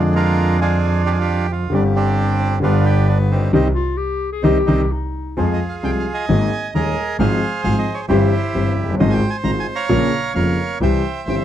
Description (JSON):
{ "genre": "tango", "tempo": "133 BPM", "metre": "4/4", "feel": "rubato", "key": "C minor, F minor from 5.4 s", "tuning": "A4 = 443 Hz", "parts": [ { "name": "bandoneon", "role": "melody", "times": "0.0-11.4 s", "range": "Eb3 to Bb5", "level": "-22 LUFS", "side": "right 4 dB", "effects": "none" }, { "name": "warm concert grand piano", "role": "accompaniment", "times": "0.0-11.4 s", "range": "Eb1 to Ab4", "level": "-18 LUFS", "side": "left 2 dB", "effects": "none" }, { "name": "clear double bass", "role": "bass", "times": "0.0-11.4 s", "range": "F1 to F2", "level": "-21 LUFS", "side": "right 1 dB", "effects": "none" }, { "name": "clear clarinet", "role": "second line", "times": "3.7-5.4 s", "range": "Eb4 to Ab4", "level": "-24 LUFS", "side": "left 6 dB", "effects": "none" } ], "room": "light reverb", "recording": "dark, warm production", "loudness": "-16 LUFS", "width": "side -11 dB against mid", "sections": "0.0-5.4 A section; 5.4-11.4 B section", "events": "band accent 3.5-5.4", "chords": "0.0 Ddim/F; 1.7 Gsus4; 2.6 G; 3.5 Cm; 5.4 Fm; 6.3 Absus2; 7.2 Fm/Ab; 8.1 C/G; 9.0 Fm7/Ab; 9.9 Bbm; 10.8 C" }